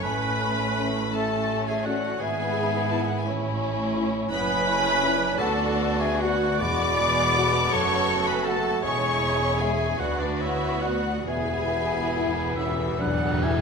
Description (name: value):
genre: classical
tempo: 45-58 BPM (dotted quarters)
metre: 6/8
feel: rubato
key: unclear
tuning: A4 = 440 Hz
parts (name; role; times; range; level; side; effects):
- rich symphonic violin section; melody; 0.0-13.6 s; D5 to D6; -30 LUFS; left 3 dB; none
- clear clarinet; second line; 0.0-13.4 s; C#4 to G#4; -35 LUFS; equal; none
- mellow hollow concert flute; second line; 0.0-13.6 s; B4 to B5; -31 LUFS; left 3 dB; none
- rich symphonic violin section; second line; 0.0-13.6 s; A3 to A4; -31 LUFS; left 3 dB; none
- warm oboe; second line; 0.0-13.6 s; D4 to G#5; -32 LUFS; right 1 dB; none
- clear symphonic viola section; accompaniment; 0.0-12.5 s; D4 to D5; -30 LUFS; right 1 dB; none
- warm bassoon; accompaniment; 0.0-13.4 s; G#3 to C#4; -34 LUFS; right 3 dB; none
- clear symphonic double bass section; bass; 0.0-13.6 s; E1 to D2; -32 LUFS; right 4 dB; none
- rich symphonic cello section; bass; 0.0-13.6 s; D2 to G#3; -32 LUFS; right 2 dB; none
- mellow French horn section; sustained chords; 0.8-13.6 s; G#3 to G#4; -34 LUFS; left 4 dB; none
- timpani; percussion; 6.6-13.6 s; E2; -34 LUFS; left 2 dB; none
room: wet concert hall reverb, RT60 2.1 s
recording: minimal, uncompressed stereo recording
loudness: -22 LUFS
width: side -5 dB against mid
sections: 0.0-13.6 A section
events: timpani fill 11.3-13.6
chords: 0.0 A; 2.2 E/G#; 3.3 A; 4.3 F#m7; 5.4 Bm7/D; 6.6 E9; 7.7 F#m; 8.8 C#m/E; 10.0 Bm/D; 11.3 E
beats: | 0.04 1.15 | 2.22 3.27 | 4.33 5.41 | 6.61 7.73 | 8.84 10.01 | 11.28 12.58